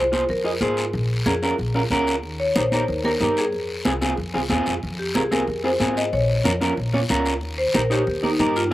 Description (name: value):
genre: latin, cumbia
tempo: 185 BPM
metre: 4/4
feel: straight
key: F minor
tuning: A4 = 440 Hz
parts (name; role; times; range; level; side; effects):
- marimba with hard mallets; melody; 0.0-8.7 s; Eb4 to Eb5; -24 LUFS; left 1 dB; slapback echo
- electric guitar at the edge of break-up; accompaniment; 0.0-8.7 s; C4 to Eb5; -24 LUFS; right 1 dB; slapback echo
- upright bass; bass; 0.0-8.7 s; Bb1 to Ab2; -27 LUFS; equal; none
- congas; percussion; 0.1-8.6 s; none; -28 LUFS; right 1 dB; none
- guiro; percussion; 0.1-8.7 s; none; -31 LUFS; left 2 dB; none
room: light reverb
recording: recorded outdoors, with no room sound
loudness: -19 LUFS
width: side -15 dB against mid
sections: 0.0-8.7 A section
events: none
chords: 0.0 Fm; 0.9 Bbm; 2.2 Eb; 3.5 Fm; 6.1 Bbm; 7.4 Eb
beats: 0.29 0.61 | 0.94 1.26 1.58 1.91 | 2.23 2.56 2.88 3.21 | 3.53 3.85 4.18 4.50 | 4.83 5.15 5.48 5.80 | 6.12 6.45 6.77 7.10 | 7.42 7.75 8.07 8.39 | 8.72